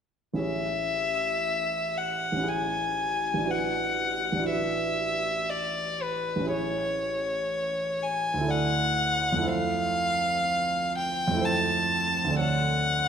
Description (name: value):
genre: classical, impressionist duo for violin and grand piano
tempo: 60 BPM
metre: 3/4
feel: uneven beats, rubato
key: A major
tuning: A4 = 440 Hz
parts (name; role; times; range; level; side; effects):
- warm grand piano; accompaniment; 0.3-13.1 s; A1 to D5; -29 LUFS; right 2 dB; none
- warm violin; melody; 0.4-13.1 s; B4 to A5; -26 LUFS; left 2 dB; none
room: wet scoring stage reverb, RT60 1.6 s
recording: minimal, uncompressed stereo recording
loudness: -25 LUFS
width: side -7 dB against mid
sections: 0.4-13.1 A section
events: none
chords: 0.4 Amaj7; 3.5 E9sus4/A; 6.5 Amaj7; 8.5 Dadd9; 9.5 Fmaj7; 12.4 Dmaj7